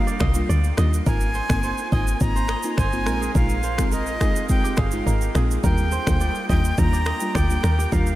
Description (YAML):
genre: afrobeats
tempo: 105 BPM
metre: 4/4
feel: straight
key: unclear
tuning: A4 = 440 Hz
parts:
  - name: breathy bright jazz flute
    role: melody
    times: 0.0-8.2 s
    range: Eb5 to Bb5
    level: -28 LUFS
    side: equal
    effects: diffuse ambient delay
  - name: FM electric piano with soft pad layer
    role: accompaniment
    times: 0.0-8.1 s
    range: G3 to F4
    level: -28 LUFS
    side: left 1 dB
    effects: chorus
  - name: kora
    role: riff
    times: 0.0-8.2 s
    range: G4 to Eb5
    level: -31 LUFS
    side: right 5 dB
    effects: diffuse ambient delay
  - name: downlifter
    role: sound effects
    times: 0.0-1.1 s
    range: none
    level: barely audible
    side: none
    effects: none
  - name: afro-pop drum kit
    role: drums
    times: 0.1-8.2 s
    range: finger snaps, kick drum, rim click, shaker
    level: -24 LUFS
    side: equal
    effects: none
  - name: woody log drum bass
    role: bass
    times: 0.2-8.2 s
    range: G1 to Eb2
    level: -22 LUFS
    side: equal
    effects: none
room: light reverb, digital ambience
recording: none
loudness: -19 LUFS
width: side -15 dB against mid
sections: 0.0-8.2 A section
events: none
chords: 0.0 Ebmaj9; 1.1 Ab69; 5.6 Ebmaj9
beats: 0.49 | 1.06 1.64 2.21 2.78 | 3.35 3.92 4.49 5.06 | 5.64 6.21 6.78 7.35 | 7.92